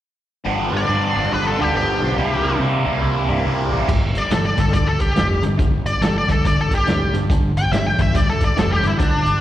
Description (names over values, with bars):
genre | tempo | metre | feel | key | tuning
blues rock power trio and southern rock | 141 BPM | 4/4 | swing 62% on 8ths | G mixolydian | A4 = 444 Hz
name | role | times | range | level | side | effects
crunchy overdriven guitar | riff | 0.4-9.4 s | G2 to E4 | -21 LUFS | equal | phaser, slapback echo
fuzz fingered electric bass | bass | 0.5-9.4 s | F1 to C3 | -22 LUFS | equal | overdrive
dark smooth lead guitar | melody | 0.8-9.4 s | D4 to G5 | -21 LUFS | left 2 dB | wah, overdrive, slapback echo
vintage drum kit | drums | 3.9-9.3 s | crash cymbal, hi-hat, kick drum, snare drum | -21 LUFS | equal | none
room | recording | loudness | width
little or no reverb | live gig heard through the venue's PA, recital hall reverb | -16 LUFS | side -12 dB against mid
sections
0.5-3.9 A section; 3.9-9.4 B section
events
none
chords
0.5 G7; 2.2 C7; 3.9 G5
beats
| 0.46 0.89 1.31 1.74 | 2.17 2.60 3.03 3.46 | 3.88 4.31 4.74 5.16 | 5.59 6.01 6.44 6.87 | 7.29 7.71 8.14 8.56 | 8.99